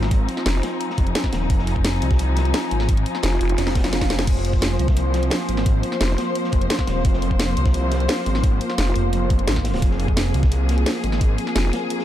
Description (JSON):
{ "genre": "dark technical drum and bass", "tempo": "173 BPM", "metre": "4/4", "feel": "straight", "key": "F minor", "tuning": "A4 = 443 Hz", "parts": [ { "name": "muted studio string section", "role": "sustained chords", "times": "0.0-12.0 s", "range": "F3 to C5", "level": "-27 LUFS", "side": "left 3 dB", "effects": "sidechain pumping" }, { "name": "wide detuned saw bass", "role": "bass", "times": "0.0-11.4 s", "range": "Eb1 to C2", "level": "-21 LUFS", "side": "equal", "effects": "chorus, overdrive" }, { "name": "crunchy breakbeat drum kit", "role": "drums", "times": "0.0-12.0 s", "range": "hi-hat, snare drum", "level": "-34 LUFS", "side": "equal", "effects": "none" }, { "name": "drum and bass drum kit", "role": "drums", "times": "0.0-12.0 s", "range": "crash cymbal, hi-hat, snare drum", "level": "-25 LUFS", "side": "equal", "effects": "none" }, { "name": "warbly tape-like pad", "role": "texture", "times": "0.0-12.0 s", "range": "C4 to Ab5", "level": "-29 LUFS", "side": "right 2 dB", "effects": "chorus, built-in reverb, sidechain pumping" }, { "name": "electronic kick drum", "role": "drums", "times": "0.1-11.3 s", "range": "none", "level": "-20 LUFS", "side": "equal", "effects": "none" }, { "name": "vowel-sweep wobble bass", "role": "bass", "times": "0.5-0.6, 3.2-3.6, 6.0-6.2, 8.8-8.9, 11.6-11.7 s", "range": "F1", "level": "-20 LUFS", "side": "equal", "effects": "chorus" }, { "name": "swell", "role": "sound effects", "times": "3.7-4.3 s", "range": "none", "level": "-32 LUFS", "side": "right 2 dB", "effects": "none" } ], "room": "small room ambience", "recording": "dark, warm production", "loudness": "-18 LUFS", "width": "side -12 dB against mid", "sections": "0.0-12.0 A section", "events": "drum fill 3.6-4.3; swell 3.7-4.3", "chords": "0.0 F5" }